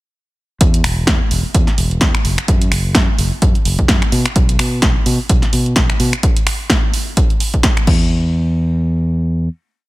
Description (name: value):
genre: piano house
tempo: 128 BPM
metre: 4/4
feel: swing 57% on 16ths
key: unclear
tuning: A4 = 439 Hz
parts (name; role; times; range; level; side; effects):
- overdriven fingered electric bass; bass; 0.6-9.5 s; E1 to B2; -17 LUFS; equal; sidechain pumping
- electronic kick drum; drums; 0.6-8.0 s; none; -15 LUFS; equal; none
- punchy analog drum machine; drums; 0.6-8.0 s; crash cymbal, finger snaps, hi-hat, snare drum; -18 LUFS; equal; none
room: little or no reverb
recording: none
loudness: -13 LUFS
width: side -19 dB against mid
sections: 0.6-8.1 drop; 8.1-9.9 final hit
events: drop 0.6-8.1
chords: none